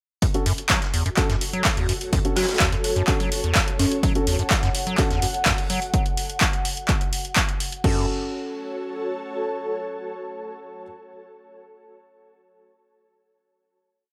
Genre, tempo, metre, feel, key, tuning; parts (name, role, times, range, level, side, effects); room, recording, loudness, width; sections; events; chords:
acid house; 126 BPM; 4/4; straight; F# minor; A4 = 440 Hz
acid bass, square; riff; 0.2-8.1 s; E2 to F#3; -28 LUFS; equal; overdrive, cassette tape, sidechain pumping, tape echo
electronic kick drum; drums; 0.2-7.9 s; -26 LUFS; equal; overdrive
loose indie drum kit; drums; 0.2-5.9 s; hi-hat, snare drum; -37 LUFS; equal
punchy analog drum machine; drums; 0.2-7.9 s; crash cymbal, handclaps, hi-hat; -27 LUFS; equal; overdrive
ethereal airy pad; texture; 1.1-11.0 s; F#4 to A5; -34 LUFS; equal; ensemble chorus, built-in reverb, tremolo, sidechain pumping
dark grand piano; stabs; 0.3-10.8 s; C#4 to A4; -32 LUFS; equal; tape echo
buzzing marimba with hard mallets; melody; 2.4-4.2 s; C#4 to F#4; -31 LUFS; equal; delay
dark analog pad; sustained chords; 4.0-7.9 s; F#5; -34 LUFS; equal; chorus, sidechain pumping
moderate studio reverb, RT60 0.6 s; -23 LUFS; mono
0.2-7.8 groove; 7.8-11.7 final chord
0.2 F#m